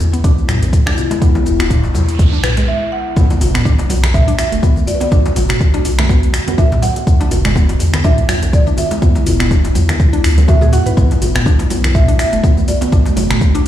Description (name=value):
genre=afro house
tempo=123 BPM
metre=4/4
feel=swing 56% on 16ths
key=B dorian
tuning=A4 = 440 Hz
part: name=ethereal airy pad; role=sustained chords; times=0.0-13.7 s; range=D3 to F#4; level=-22 LUFS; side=left 1 dB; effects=ensemble chorus, built-in reverb, sidechain pumping
part: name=warm sub bass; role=bass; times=0.0-13.7 s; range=E1 to G#2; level=-17 LUFS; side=equal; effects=sidechain pumping
part: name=afro-pop drum kit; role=drums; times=0.0-13.7 s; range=finger snaps, hi-hat, shaker, toms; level=-20 LUFS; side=equal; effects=overdrive
part: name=congas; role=percussion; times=0.0-13.7 s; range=none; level=-25 LUFS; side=right 1 dB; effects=none
part: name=mallet-like synth pluck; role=arpeggios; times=0.1-13.6 s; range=F#3 to B4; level=-23 LUFS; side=equal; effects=chorus, sidechain pumping, ping-pong delay
part: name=electronic kick drum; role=drums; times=0.2-13.5 s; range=none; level=-12 LUFS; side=equal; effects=overdrive
part: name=djembe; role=percussion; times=0.2-13.6 s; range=none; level=-24 LUFS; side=left 2 dB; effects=none
part: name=noise sweep and impact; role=sound effects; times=1.6-5.1 s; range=none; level=-24 LUFS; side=right 1 dB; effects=none
part: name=buzzing marimba with medium hard mallets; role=melody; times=2.7-13.1 s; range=B4 to F#5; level=-21 LUFS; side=right 2 dB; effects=ping-pong delay
room=light reverb, digital ambience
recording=played on a big sound system in a bare room, large studio reverb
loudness=-11 LUFS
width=side -12 dB against mid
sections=0.0-3.2 A section; 3.2-13.7 B section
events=noise sweep 1.6-3.2; stop 2.7-3.2; drop 3.2-13.7; impact 3.2-5.1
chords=0.0 E7; 3.2 Bm7; 7.1 E7; 11.0 Bm7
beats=0.24 0.73 | 1.22 1.70 2.19 2.68 | 3.17 3.65 4.14 4.63 | 5.12 5.61 6.09 6.58 | 7.07 7.56 8.05 8.53 | 9.02 9.51 10.00 10.48 | 10.97 11.46 11.95 12.44 | 12.92 13.41